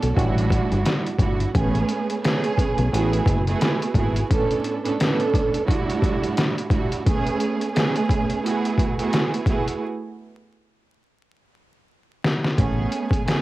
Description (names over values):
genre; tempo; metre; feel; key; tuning
hip hop, boom-bap hip-hop; 87 BPM; 4/4; swing 58% on 16ths; A major; A4 = 439 Hz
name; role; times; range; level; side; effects
dark symphonic string section; accompaniment; 0.0-13.4 s; A2 to A4; -23 LUFS; right 3 dB; cassette tape
deep dub fingered electric bass; bass; 0.0-4.2, 12.6-12.8 s; F#1 to B1; -22 LUFS; left 1 dB; none
trip hop sampler-style drum kit; drums; 0.0-13.4 s; hi-hat, kick drum, snare drum; -22 LUFS; left 1 dB; overdrive, cassette tape
room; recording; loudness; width
light reverb; home recording on cassette, vinyl crackle; -19 LUFS; side -17 dB against mid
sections
0.0-12.6 A section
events
break 9.8-12.6; drum fill 11.2-12.6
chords
0.2 Em9; 1.5 Amaj9; 2.9 F#m11; 4.3 Bm9/A; 5.7 Em9/A; 7.1 Amaj9; 8.4 F#m11/A; 9.8 N.C.; 12.6 Amaj9